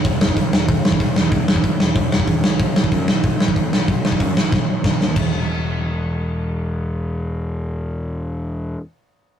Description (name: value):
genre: punk rock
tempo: 187 BPM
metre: 4/4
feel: straight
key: unclear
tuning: A4 = 438 Hz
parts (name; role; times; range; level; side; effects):
- fuzz picked electric bass; bass; 0.0-8.7 s; E1 to F#2; -22 LUFS; left 1 dB; overdrive
- big rock drum kit; drums; 0.0-5.2 s; crash cymbal, hi-hat, kick drum, snare drum; -17 LUFS; right 1 dB; none
room: light reverb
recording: rough rehearsal-room recording, warm saturation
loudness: -17 LUFS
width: side -9 dB against mid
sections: 0.0-5.2 A section; 5.2-7.7 B section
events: drum fill 4.5-5.2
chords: none